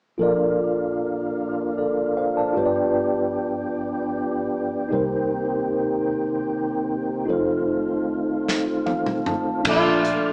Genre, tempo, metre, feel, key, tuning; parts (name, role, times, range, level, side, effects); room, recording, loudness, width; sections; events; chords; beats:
slow gospel; 51 BPM (dotted quarters); 6/8; straight; Bb major; A4 = 441 Hz
mellow tine electric piano; accompaniment; 0.2-10.3 s; G2 to A5; -26 LUFS; equal
tonewheel organ; sustained chords; 0.2-10.3 s; Eb3 to F5; -28 LUFS; equal; slow rotary speaker, chorus vibrato
fingered electric bass; bass; 0.2-10.3 s; F1 to C2; -35 LUFS; equal
modern studio drum kit; drums; 8.5-10.2 s; crash cymbal, hi-hat, kick drum, snare drum, toms; -29 LUFS; equal
metal-body resonator slide guitar; melody; 9.7-10.3 s; A3 to F4; -22 LUFS; equal
moderate stone room reverb, RT60 1.1 s; band playing live in one room, small speaker sound; -23 LUFS; mono
0.2-9.7 A section
tine electric piano fill 8.5-9.7; drum fill 8.5-9.7
0.2 Bbmaj7; 2.6 G7; 4.9 Cm7; 7.3 F7; 9.7 Bbmaj7
| 0.19 1.38 | 2.56 3.75 | 4.93 6.11 | 7.29 8.48 | 9.66